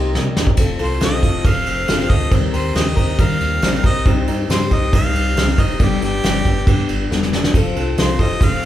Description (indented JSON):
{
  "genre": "folk rock and heartland rock",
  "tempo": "138 BPM",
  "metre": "4/4",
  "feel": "straight",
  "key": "unclear",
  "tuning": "A4 = 440 Hz",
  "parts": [
    { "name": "clear harmonica", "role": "melody", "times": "0.0-8.7 s", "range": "G4 to F5", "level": "-23 LUFS", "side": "equal", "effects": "none" },
    { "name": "picked steel-string acoustic guitar", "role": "accompaniment", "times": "0.0-8.7 s", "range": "G2 to Bb4", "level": "-22 LUFS", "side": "left 5 dB", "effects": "none" },
    { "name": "fingered electric bass", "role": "bass", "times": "0.0-8.7 s", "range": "E1 to Eb3", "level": "-22 LUFS", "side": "equal", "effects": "none" },
    { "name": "soft brush drum kit", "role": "drums", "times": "0.2-8.7 s", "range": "crash cymbal, kick drum, ride cymbal, snare drum", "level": "-17 LUFS", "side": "right 1 dB", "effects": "none" }
  ],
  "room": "moderate large studio reverb, RT60 1.2 s",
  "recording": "band playing live in one room",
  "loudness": "-14 LUFS",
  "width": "side -12 dB against mid",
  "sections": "0.6-8.7 A section",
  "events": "drum fill 0.1-0.6, 7.1-7.5; harmonica solo 0.6-8.7",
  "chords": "0.0 Cm7; 0.6 F; 2.3 Eb6; 4.1 Cm; 5.8 G; 7.5 F"
}